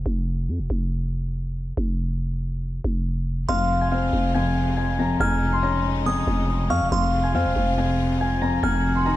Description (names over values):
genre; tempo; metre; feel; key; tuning
hip hop; 140 BPM; 4/4; half-time; F minor; A4 = 440 Hz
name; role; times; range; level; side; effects
growling 808-style bass; bass; 0.0-9.2 s; F1 to F2; -24 LUFS; equal; none
concert harp; melody; 3.5-9.2 s; F5 to C6; -25 LUFS; left 2 dB; low-pass filter, digital delay
delicate synth tine bell; second line; 3.5-9.0 s; C6 to F6; -30 LUFS; right 3 dB; chorus, digital delay
dark concert grand piano; accompaniment; 3.5-9.2 s; F2 to Eb4; -25 LUFS; left 2 dB; low-pass filter
bright symphonic string section; sustained chords; 3.5-9.2 s; C3 to Gb4; -32 LUFS; left 1 dB; none
room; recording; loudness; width
light reverb, studio reverb; dark, warm production; -21 LUFS; side -14 dB against mid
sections
0.0-3.5 A section; 3.5-9.2 B section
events
break 0.0-3.5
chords
0.0 N.C.; 3.5 Fm; 5.2 Dbadd9/F; 6.9 Fm; 8.6 Ebm/F